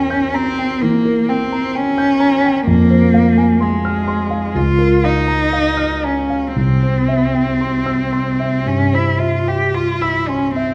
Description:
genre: classical, romantic duo for cello and grand piano.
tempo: 55-66 BPM.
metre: 4/4.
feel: rubato.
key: unclear.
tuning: A4 = 440 Hz.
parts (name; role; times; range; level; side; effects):
rich cello; melody; 0.0-10.7 s; Ab3 to G4; -18 LUFS; equal; none.
dark concert grand piano; accompaniment; 0.0-10.7 s; C2 to G6; -20 LUFS; equal; none.
room: wet recital hall reverb, RT60 1.4 s.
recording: none.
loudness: -16 LUFS.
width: mono.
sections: 0.0-10.7 A section.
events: none.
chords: 0.0 Edim7; 2.7 Fm; 4.6 Bbm/Db; 6.6 C.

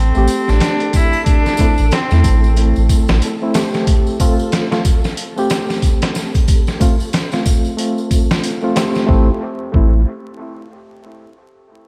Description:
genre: trip hop.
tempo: 92 BPM.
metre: 4/4.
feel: swing 59% on 16ths.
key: A minor.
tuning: A4 = 440 Hz.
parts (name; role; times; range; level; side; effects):
rich cello; melody; 0.0-2.6 s; C4 to E4; -22 LUFS; equal; tape echo.
soft dub sub bass; bass; 0.0-3.2, 9.1-10.0 s; A1 to E2; -15 LUFS; equal; none.
flickering grainy texture; texture; 0.0-9.1 s; A4; -34 LUFS; equal; built-in reverb, analog chorus.
reed electric piano; accompaniment; 0.1-10.0 s; A3 to G4; -22 LUFS; equal; tremolo, vintage 12-bit sampler grit, tape echo.
tambourine and triangle; percussion; 0.1-9.1 s; none; -34 LUFS; equal; none.
trip hop sampler-style drum kit; drums; 0.3-9.9 s; hi-hat, kick drum, snare drum; -18 LUFS; equal; none.
room: light reverb.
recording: vinyl crackle.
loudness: -15 LUFS.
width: mono.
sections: 0.0-9.1 A section; 9.1-11.7 B section.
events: none.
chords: 0.0 Am; 3.9 F; 9.1 Am.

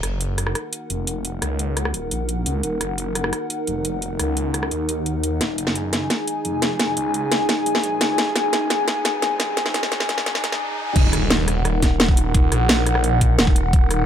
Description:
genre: dark technical drum and bass.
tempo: 173 BPM.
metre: 4/4.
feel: straight.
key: Eb minor.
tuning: A4 = 440 Hz.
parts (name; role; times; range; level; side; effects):
dark analog pad; sustained chords; 0.0-14.1 s; Eb4 to Ab5; -24 LUFS; left 1 dB; chorus, sidechain pumping.
phased detuned saw bass; bass; 0.0-14.1 s; Eb1 to Eb2; -24 LUFS; equal; phaser, overdrive, sidechain pumping.
drum and bass drum kit; drums; 0.0-14.0 s; crash cymbal, hi-hat, rim click, snare drum; -22 LUFS; equal; none.
riser, swell and impact; sound effects; 7.7-12.3 s; none; -31 LUFS; equal; none.
electronic kick drum; drums; 11.0-13.8 s; none; -17 LUFS; equal; none.
room: light reverb.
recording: high-pass filter.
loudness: -18 LUFS.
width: side -9 dB against mid.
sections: 0.0-11.0 A section; 11.0-14.1 B section.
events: build-up 0.0-11.0; drum fill 5.4-10.6; riser 7.7-11.0; swell 10.3-11.0; drop 11.0-14.1; impact 11.0-12.3.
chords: 0.0 Ebm.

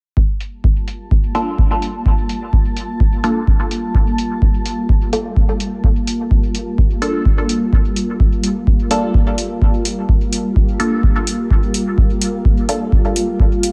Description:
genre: dub techno.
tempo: 127 BPM.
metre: 4/4.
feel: straight.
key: G minor.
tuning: A4 = 440 Hz.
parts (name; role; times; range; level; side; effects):
granular cloud pad; sustained chords; 0.8-13.7 s; G3 to A5; -24 LUFS; equal; built-in reverb, sidechain pumping.
electronic kick drum; drums; 0.2-13.5 s; none; -16 LUFS; equal; none.
electronic hi-hat; drums; 0.4-13.7 s; none; -27 LUFS; equal; low-pass filter on hats.
filtered dub chord stab; stabs; 1.3-13.7 s; Bb3 to A4; -24 LUFS; equal; phaser, cassette tape, sidechain pumping, dub echo.
room: light reverb.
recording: echo-heavy mix.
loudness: -16 LUFS.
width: mono.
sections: 0.2-13.7 A section.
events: none.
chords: 0.2 Gm9.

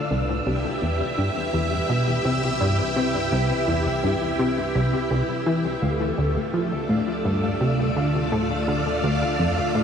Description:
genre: ambient, sequencer-driven space music.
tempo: 84 BPM.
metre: 4/4.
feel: straight.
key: unclear.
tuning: A4 = 441 Hz.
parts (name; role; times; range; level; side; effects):
string machine, full ensemble; sustained chords; 0.0-9.8 s; A3 to F5; -25 LUFS; equal; phaser, ensemble chorus, shimmer reverb.
concert harp; arpeggios; 0.0-9.8 s; C4 to F5; -34 LUFS; equal; auto-pan, ping-pong delay, shimmer reverb.
analog drone; bass; 0.1-9.8 s; C2 to D2; -38 LUFS; equal; chorus.
wind-like tuned noise texture; texture; 0.0-9.8 s; E6; -34 LUFS; right 2 dB; built-in reverb, lush chorus, shimmer reverb.
plucky analog bass; riff; 0.1-9.8 s; C2 to F3; -23 LUFS; equal; analog chorus, ping-pong delay, shimmer reverb.
room: wet huge ambient reverb, RT60 8.1 s.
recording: dreamy mix soaked in reverb.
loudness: -21 LUFS.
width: side -7 dB against mid.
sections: 0.0-9.8 A section.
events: none.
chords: 0.1 Cmaj7; 5.8 Dm.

